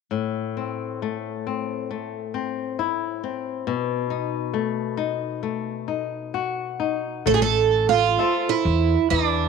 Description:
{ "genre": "fado-style ballad", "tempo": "64-69 BPM", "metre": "4/4", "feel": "rubato", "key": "unclear", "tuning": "A4 = 439 Hz", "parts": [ { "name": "flamenco guitar", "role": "accompaniment", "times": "0.1-9.5 s", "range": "A2 to E5", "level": "-26 LUFS", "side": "left 10 dB", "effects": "none" }, { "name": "picked twelve-string acoustic guitar", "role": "melody", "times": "7.3-9.5 s", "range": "D4 to A4", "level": "-19 LUFS", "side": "right 10 dB", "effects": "none" }, { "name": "upright bass", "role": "bass", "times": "7.3-9.5 s", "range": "A1 to E2", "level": "-24 LUFS", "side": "equal", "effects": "none" } ], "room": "moderate plate reverb, RT60 2.7 s", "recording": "1960s-style stereo with parts hard left and right", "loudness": "-22 LUFS", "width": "side -5 dB against mid", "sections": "0.1-7.3 A section; 7.3-9.5 B section", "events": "none", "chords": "0.1 Am; 3.7 B7; 7.3 Am" }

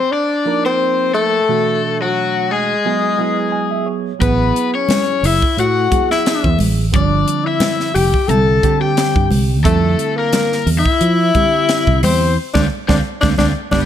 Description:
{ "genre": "electric jazz fusion", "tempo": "88 BPM", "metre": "4/4", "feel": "swing 54% on 16ths", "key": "unclear", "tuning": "A4 = 439 Hz", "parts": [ { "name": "breathy tenor saxophone", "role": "melody", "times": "0.0-13.8 s", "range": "F#3 to A4", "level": "-18 LUFS", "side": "left 3 dB", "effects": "slapback echo" }, { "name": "overdriven electric guitar", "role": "second line", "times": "0.0-13.8 s", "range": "F#4 to A5", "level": "-21 LUFS", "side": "left 7 dB", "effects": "none" }, { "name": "barky reed electric piano", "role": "accompaniment", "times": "0.5-13.8 s", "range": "B2 to G#5", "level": "-22 LUFS", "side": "right 7 dB", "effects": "overdrive, phaser" }, { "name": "fretless electric bass", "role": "bass", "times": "4.2-13.9 s", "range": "F1 to F3", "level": "-16 LUFS", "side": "right 1 dB", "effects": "ensemble chorus" }, { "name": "crisp fusion drum kit", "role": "drums", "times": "4.2-13.9 s", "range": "hi-hat, kick drum, snare drum", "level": "-19 LUFS", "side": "right 1 dB", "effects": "none" }, { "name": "congas", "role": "percussion", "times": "4.2-13.9 s", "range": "none", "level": "-22 LUFS", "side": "left 2 dB", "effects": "none" } ], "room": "light reverb, small room reverb", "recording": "none", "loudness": "-13 LUFS", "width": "side -10 dB against mid", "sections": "0.0-13.9 A section", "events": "reed electric piano fill 3.2-4.2; band accent 12.4-13.9", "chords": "0.0 F7sus4; 1.5 Bm7; 2.8 Eadd9; 4.2 Asus2; 6.9 G5; 8.3 Cadd9; 9.6 F5; 12.4 Dm7" }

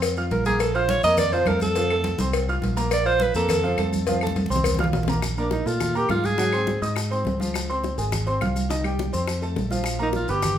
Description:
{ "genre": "Afro-Cuban jazz", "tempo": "207 BPM", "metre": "4/4", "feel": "straight", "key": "unclear", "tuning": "A4 = 441 Hz", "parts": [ { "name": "warm upright piano", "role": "accompaniment", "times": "0.0-10.5 s", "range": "Eb3 to F6", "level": "-27 LUFS", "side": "right 1 dB", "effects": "none" }, { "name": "fingered electric bass", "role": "bass", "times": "0.0-10.6 s", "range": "G1 to Bb2", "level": "-26 LUFS", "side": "equal", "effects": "none" }, { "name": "claves", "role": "percussion", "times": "0.0-10.6 s", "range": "none", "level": "-36 LUFS", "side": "left 5 dB", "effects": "none" }, { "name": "congas", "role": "percussion", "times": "0.0-10.6 s", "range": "none", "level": "-30 LUFS", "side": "right 1 dB", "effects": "none" }, { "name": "cowbell and bongos", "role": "percussion", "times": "0.0-10.6 s", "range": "none", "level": "-30 LUFS", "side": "left 5 dB", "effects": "none" }, { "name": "maracas", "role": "percussion", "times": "0.0-10.6 s", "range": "none", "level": "-36 LUFS", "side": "left 4 dB", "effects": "none" }, { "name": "breathy alto saxophone", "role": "melody", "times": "0.3-6.8, 10.0-10.6 s", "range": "D4 to Eb5", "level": "-23 LUFS", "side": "right 1 dB", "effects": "none" } ], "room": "moderate large studio reverb, RT60 0.9 s", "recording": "band playing live in one room", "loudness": "-20 LUFS", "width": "side -10 dB against mid", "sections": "0.0-5.2 A section; 5.2-10.6 B section", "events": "alto saxophone solo 0.0-5.2; drum fill 4.1-5.2", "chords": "0.0 F5; 0.6 Bb5; 1.8 F; 2.9 Bb5; 4.1 F; 5.2 Bb5; 6.4 Ab7; 7.5 Dbmaj7; 8.7 Cmadd11; 9.3 F; 9.9 Bb5" }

